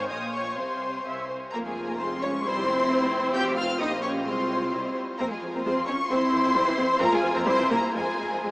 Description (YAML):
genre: quick classical-period movement for string orchestra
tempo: 131 BPM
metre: 2/4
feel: straight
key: F minor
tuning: A4 = 440 Hz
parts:
  - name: warm symphonic violin section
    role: melody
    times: 0.0-8.5 s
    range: Ab5 to G6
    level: -28 LUFS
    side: left 1 dB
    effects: none
  - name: rich symphonic violin section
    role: second line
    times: 0.0-8.5 s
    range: Ab4 to G5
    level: -30 LUFS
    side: equal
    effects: none
  - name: rich symphonic viola section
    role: accompaniment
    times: 0.0-8.5 s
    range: C3 to E5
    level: -29 LUFS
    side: equal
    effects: none
  - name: rich symphonic cello section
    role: bass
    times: 0.0-8.5 s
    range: Bb2 to G4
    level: -31 LUFS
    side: right 1 dB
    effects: none
  - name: rich symphonic double bass section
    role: bass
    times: 0.0-8.5 s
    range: F1 to F2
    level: -38 LUFS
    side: right 1 dB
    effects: none
room: wet huge ambient reverb, RT60 7.8 s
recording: in a vast, echoing space, small speaker sound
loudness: -23 LUFS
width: side -23 dB against mid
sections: 0.0-1.5 A section; 1.5-8.5 B section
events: none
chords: 0.1 Bbm; 0.6 N.C.; 1.1 C; 1.5 Fm; 2.5 C/F; 3.4 F5; 3.8 Bbm; 4.3 Fm/C; 4.7 C; 5.2 Fm; 6.1 C/F; 7.0 Fm; 7.5 C7; 7.9 Fm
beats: 0.10 | 0.58 1.06 | 1.53 2.00 | 2.45 2.90 | 3.35 3.80 | 4.26 4.73 | 5.20 5.65 | 6.10 6.55 | 7.01 7.46 | 7.95 8.43